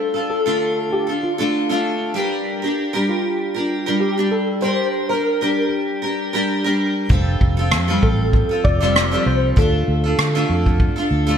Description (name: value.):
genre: acoustic pop.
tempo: 97 BPM.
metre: 4/4.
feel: swing 55% on 16ths.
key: unclear.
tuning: A4 = 440 Hz.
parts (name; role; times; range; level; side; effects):
mellow tine electric piano; melody; 0.0-10.8 s; F4 to D5; -22 LUFS; equal; ensemble chorus.
picked steel-string acoustic guitar; accompaniment; 0.0-11.4 s; D3 to Bb4; -20 LUFS; equal; double-tracked left and right.
vintage muted fingered electric bass; bass; 7.1-11.4 s; F1 to D3; -19 LUFS; equal; none.
unplugged drum kit; drums; 7.1-11.0 s; kick drum, rim click; -19 LUFS; equal; gated reverb.
room: moderate plate reverb, RT60 2.9 s.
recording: bright 1980s-style digital production.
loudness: -16 LUFS.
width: side -8 dB against mid.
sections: 0.0-11.4 A section.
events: none.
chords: 0.0 Dm; 2.1 Gm; 7.1 Fadd9; 9.6 Dm.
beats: 0.29 0.91 1.53 | 2.15 2.77 3.39 4.01 | 4.62 5.24 5.86 6.48 | 7.10 7.72 8.34 8.95 | 9.57 10.19 10.81.